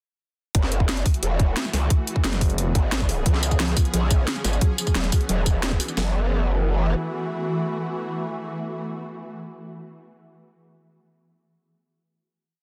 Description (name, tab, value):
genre	dark technical drum and bass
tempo	177 BPM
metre	4/4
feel	straight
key	F# minor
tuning	A4 = 440 Hz
part	swarming drone	sustained chords	1.2-9.4 s	D3 to G#4	-32 LUFS	equal	built-in reverb, sidechain pumping
part	growl bass	bass	0.5-6.9 s	E1 to C#2	-26 LUFS	equal	chorus, overdrive
part	drum and bass drum kit	drums	0.5-6.0 s	kick drum, snare drum	-23 LUFS	equal	overdrive
part	drum and bass drum kit	drums	0.5-6.0 s	hi-hat, snare drum, tambourine	-29 LUFS	equal	overdrive
part	growling FM bass	bass	2.2-2.7 s	F#1	-27 LUFS	equal	none
part	warbly dusty pluck	arpeggios	3.3-6.1 s	E#3 to F#4	-34 LUFS	equal	chorus, sidechain pumping, digital delay
room	light reverb, digital ambience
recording	dense, heavily limited modern master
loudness	-23 LUFS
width	mono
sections	0.5-6.0 drop; 6.0-8.7 final chord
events	drop 0.5-6.0; band accent 5.6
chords	0.5 F#m7; 1.9 G#dim; 3.3 C#; 4.6 E; 6.0 F#m7